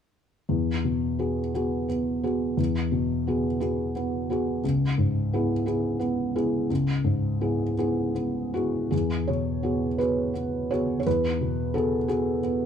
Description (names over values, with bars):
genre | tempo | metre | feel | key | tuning
neoclassical minimalist piano | 58 BPM (dotted quarters) | 6/8 | rubato | E major | A4 = 440 Hz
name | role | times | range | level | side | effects
felt-muted upright piano | solo | 0.5-12.7 s | C#2 to C#5 | -24 LUFS | equal | none
room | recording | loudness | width
light reverb | dark, warm production | -24 LUFS | side -8 dB against mid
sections
0.5-8.9 A section; 8.9-12.7 B section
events
none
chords
0.5 Eadd9; 4.6 C#m7; 8.9 Eadd9